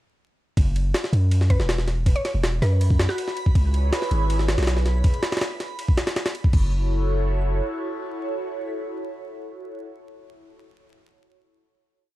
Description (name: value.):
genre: drum and bass, jungle.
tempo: 161 BPM.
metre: 4/4.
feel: straight.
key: F# minor.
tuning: A4 = 440 Hz.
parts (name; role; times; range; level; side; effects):
long sustained 808-style bass; bass; 0.6-7.6 s; E1 to F#2; -21 LUFS; equal; none.
jungle sampler-style drum kit; drums; 0.6-6.6 s; crash cymbal, kick drum, ride cymbal, snare drum; -22 LUFS; equal; small room ambience.
backwards swelling texture; texture; 0.6-6.5 s; B5; -36 LUFS; right 3 dB; built-in reverb.
mallet-like synth pluck; melody; 1.5-3.5 s; F#4 to C#5; -31 LUFS; equal; chorus, cassette tape, dub echo.
airy breathy pad; sustained chords; 3.6-9.9 s; E4 to C#5; -31 LUFS; right 1 dB; chorus, phaser, vintage 12-bit sampler grit.
room: digital ambience.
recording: dark, warm production, vinyl crackle.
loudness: -20 LUFS.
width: side -16 dB against mid.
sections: 0.6-6.5 drop; 6.5-9.5 final chord.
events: drop 0.6-6.5.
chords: 0.6 Esus2; 3.6 C#m7; 6.5 F#m7.